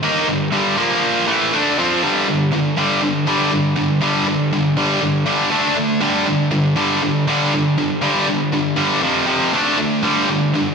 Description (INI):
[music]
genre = rock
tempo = 120 BPM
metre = 4/4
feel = straight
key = G minor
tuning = A4 = 439 Hz
[part]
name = heavy high-gain guitar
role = solo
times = 0.0-10.7 s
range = F2 to F4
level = -15 LUFS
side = equal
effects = distortion, slapback echo, analog delay
[sound]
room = wet recital hall reverb, RT60 1.6 s, digital ambience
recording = big arena sound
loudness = -15 LUFS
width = side -5 dB against mid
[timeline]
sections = 0.0-2.0 A section; 2.0-10.7 B section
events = none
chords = 0.0 Gm; 0.8 Bb5; 1.3 Dm9/A; 2.0 G5; 5.5 D5; 6.0 G5; 9.1 F5; 9.6 D5; 10.1 G5